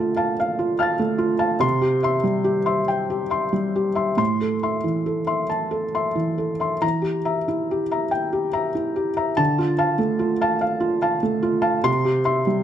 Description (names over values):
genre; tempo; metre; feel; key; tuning
neoclassical minimalist piano; 45-49 BPM (dotted quarters); 6/8; rubato; D minor; A4 = 439 Hz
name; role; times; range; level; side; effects
felt-muted upright piano; solo; 0.0-12.6 s; A2 to A6; -19 LUFS; equal; none
room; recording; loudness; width
light reverb; close, detailed microphones; -19 LUFS; side -10 dB against mid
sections
0.0-12.6 A section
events
none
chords
0.0 Dm; 1.6 C; 4.2 Am; 6.8 Edim; 9.4 Dm; 11.9 C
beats
0.40 | 1.63 2.88 | 4.20 5.50 | 6.83 8.12 | 9.39 10.63 | 11.87